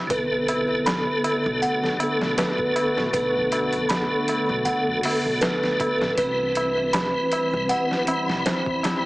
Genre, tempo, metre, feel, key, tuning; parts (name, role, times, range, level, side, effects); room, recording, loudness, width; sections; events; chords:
trip hop; 79 BPM; 4/4; swing 55% on 16ths; B phrygian; A4 = 440 Hz
deep dark ambient pad; sustained chords; 0.0-9.1 s; G3 to B5; -32 LUFS; equal; chorus, built-in reverb
tonewheel organ; accompaniment; 0.1-9.1 s; D3 to B5; -24 LUFS; equal; chorus vibrato, fast rotary speaker, harmonic tremolo, tape echo
music box; arpeggios; 0.1-8.8 s; B4 to B5; -26 LUFS; right 1 dB; tape echo
upright bass; bass; 0.1-8.4 s; A1 to C2; -37 LUFS; equal; tube saturation
trip hop sampler-style drum kit; drums; 0.1-9.0 s; hi-hat, kick drum, snare drum; -28 LUFS; equal
tabla; percussion; 0.1-9.0 s; -32 LUFS; equal
moderate echo chamber reverb, RT60 2.2 s; heavily compressed radio sound, multiband compression, small speaker sound; -20 LUFS; side -20 dB against mid
0.0-9.1 A section
0.1 Bm7; 6.2 Cmaj7